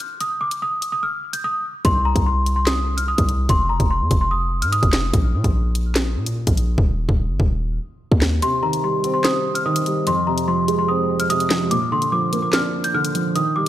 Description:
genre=hip hop, drill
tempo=146 BPM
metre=4/4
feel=half-time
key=C minor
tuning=A4 = 440 Hz
part: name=worn celesta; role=melody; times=0.0-5.1, 8.4-13.7 s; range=Bb5 to G6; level=-22 LUFS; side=left 1 dB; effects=ping-pong delay
part: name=drill drum kit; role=drums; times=0.0-13.7 s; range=handclaps, hi-hat, kick drum, snare drum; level=-21 LUFS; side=equal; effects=none
part: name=hard-hitting 808-style bass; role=bass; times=1.8-8.4 s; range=Eb1 to Bb2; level=-20 LUFS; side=equal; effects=none
part: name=felt-muted upright piano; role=accompaniment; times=8.4-13.7 s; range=F2 to C5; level=-21 LUFS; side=right 2 dB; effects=none
room=light reverb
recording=none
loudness=-17 LUFS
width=side -13 dB against mid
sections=0.0-13.7 A section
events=break 0.0-1.8; silent gap 1.4-1.8; hi-hats muted 6.8-8.4; kick muted 8.4-13.7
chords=0.0 N.C.; 1.8 Cm; 3.5 F5; 5.1 N.C.; 8.4 Cm; 10.1 Fm; 11.7 Bb

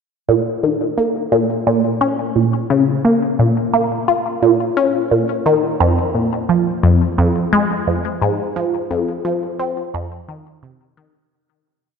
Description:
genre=ambient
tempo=87 BPM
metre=4/4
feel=straight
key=F minor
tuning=A4 = 439 Hz
part: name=resonant blip pluck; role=solo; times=0.3-11.1 s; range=F2 to F4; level=-15 LUFS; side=equal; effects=phaser, ping-pong delay
room=wet plate reverb, RT60 2.9 s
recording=dark, warm production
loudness=-15 LUFS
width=side -6 dB against mid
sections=0.3-11.3 A section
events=fade-out 7.6-11.3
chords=none

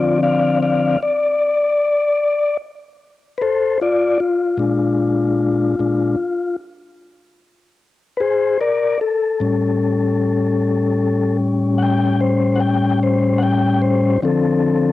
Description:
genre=blues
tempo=50 BPM (dotted quarters)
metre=12/8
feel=straight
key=D minor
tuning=A4 = 440 Hz
part: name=mellow tonewheel organ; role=solo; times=0.0-14.9 s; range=A2 to G5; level=-15 LUFS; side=left 2 dB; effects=slow rotary speaker, cassette tape
room=light reverb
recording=home recording on cassette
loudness=-15 LUFS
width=side -15 dB against mid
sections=0.0-14.9 A section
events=tonewheel organ solo 0.0-14.9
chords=0.0 Dm7; 4.6 Bb7; 9.4 A7; 14.2 Dm7

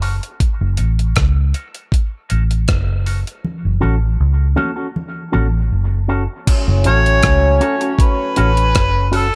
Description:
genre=dub reggae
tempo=79 BPM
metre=4/4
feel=straight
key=F# minor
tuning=A4 = 441 Hz
part: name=electric guitar with an envelope filter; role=accompaniment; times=0.0-9.3 s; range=C#4 to A4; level=-26 LUFS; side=equal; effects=high-pass filter, low-pass filter, dub echo
part: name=vintage muted fingered electric bass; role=bass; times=0.0-9.3 s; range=F#1 to C#2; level=-18 LUFS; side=equal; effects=none
part: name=dusty soul sampler-style drum kit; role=drums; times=0.0-9.3 s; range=crash cymbal, hi-hat, kick drum, rim click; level=-20 LUFS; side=equal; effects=none
part: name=congas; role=percussion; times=0.4-5.5 s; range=none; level=-28 LUFS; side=equal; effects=high-pass filter on perc, dub echo
part: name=warm trombone section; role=second line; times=6.5-9.1 s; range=A2 to C#4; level=-23 LUFS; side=equal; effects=dub echo
part: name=mellow harmonica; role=melody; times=6.9-9.4 s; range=A4 to C#5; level=-20 LUFS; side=equal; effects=dub echo
room=light reverb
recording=none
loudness=-16 LUFS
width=mono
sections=0.0-6.5 A section; 6.5-9.4 B section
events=filter sweep on clean electric guitar 0.0-6.5; filter sweep 0.0-3.4; part muted 3.4-6.5, 6.5-9.4; kick muted 5.0-6.5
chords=0.0 F#m

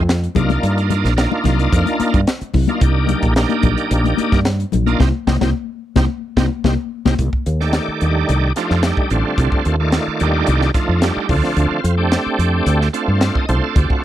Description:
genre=electric jazz fusion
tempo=110 BPM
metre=4/4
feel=straight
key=C dorian from 7.2 s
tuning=A4 = 440 Hz
part: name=bright tonewheel organ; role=accompaniment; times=0.0-14.0 s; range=D3 to Eb5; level=-19 LUFS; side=right 2 dB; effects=slow rotary speaker, chorus vibrato
part: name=woody fretless electric bass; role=bass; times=0.0-13.9 s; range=A1 to G2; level=-17 LUFS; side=equal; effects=lush chorus
part: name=crisp fusion drum kit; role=drums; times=0.1-14.0 s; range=hi-hat, kick drum, snare drum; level=-19 LUFS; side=equal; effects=none
part: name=congas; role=percussion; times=0.3-7.2 s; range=none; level=-22 LUFS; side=left 12 dB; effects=none
room=little or no reverb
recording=dry, close 1970s-style studio recording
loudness=-14 LUFS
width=side -12 dB against mid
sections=0.0-7.2 A section; 7.2-14.0 B section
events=band accent 5.0-7.2; drum fill 6.9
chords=0.4 Cm11; 7.2 Cm69; 11.3 Dm7

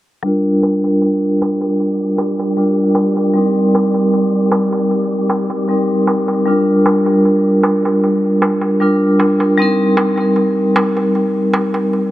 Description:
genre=trip hop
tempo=77 BPM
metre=4/4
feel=straight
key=G minor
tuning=A4 = 441 Hz
part: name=vibraphone with medium hard mallets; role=accompaniment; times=0.2-12.1 s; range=G3 to Bb4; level=-13 LUFS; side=equal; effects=tremolo, tape echo
part: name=darbuka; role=percussion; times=0.2-12.1 s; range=none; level=-22 LUFS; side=right 1 dB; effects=none
part: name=wind-like tuned noise texture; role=texture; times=1.4-12.1 s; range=G3 to G4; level=-25 LUFS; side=right 1 dB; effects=built-in reverb
room=light reverb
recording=low-pass filter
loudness=-12 LUFS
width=side -15 dB against mid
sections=0.2-12.1 A section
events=filter sweep 0.2-12.1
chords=0.2 Gm7; 3.4 Eb6; 6.5 Gm7; 9.6 Eb6

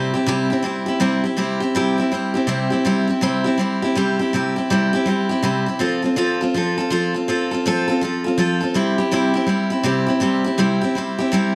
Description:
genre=rock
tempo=163 BPM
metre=4/4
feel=swing 64% on 8ths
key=C major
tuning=A4 = 440 Hz
part: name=picked steel-string acoustic guitar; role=solo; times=0.0-11.6 s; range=C3 to A4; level=-20 LUFS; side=equal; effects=none
room=moderate echo chamber reverb, RT60 1.3 s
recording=none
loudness=-20 LUFS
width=mono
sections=0.0-11.6 A section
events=none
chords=0.0 C; 5.8 F; 8.8 C

